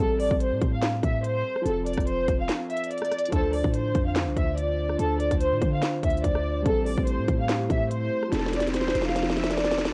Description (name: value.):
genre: hip hop, trap.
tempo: 144 BPM.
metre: 4/4.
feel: half-time.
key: D minor.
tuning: A4 = 440 Hz.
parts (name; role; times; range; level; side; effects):
warm studio violin section; melody; 0.0-9.9 s; A4 to F5; -30 LUFS; equal; low-pass filter.
dark concert grand piano; accompaniment; 0.0-9.9 s; F3 to C5; -35 LUFS; equal; low-pass filter.
warm 808-style bass; bass; 0.0-9.9 s; F1 to D3; -32 LUFS; equal; none.
trap drum kit; drums; 0.2-9.9 s; handclaps, hi-hat, kick drum, rim click, snare drum; -30 LUFS; equal; none.
dark analog pad; sustained chords; 3.3-9.9 s; D3 to C5; -34 LUFS; equal; chorus.
room: digital ambience.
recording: dry, gritty hardware recording, cassette tape.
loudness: -25 LUFS.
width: mono.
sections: 0.0-9.9 A section.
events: break 2.5-3.3; drum fill 8.3-9.9.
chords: 0.0 Am7; 1.7 F; 3.3 Dm7; 6.7 Am7; 8.3 F.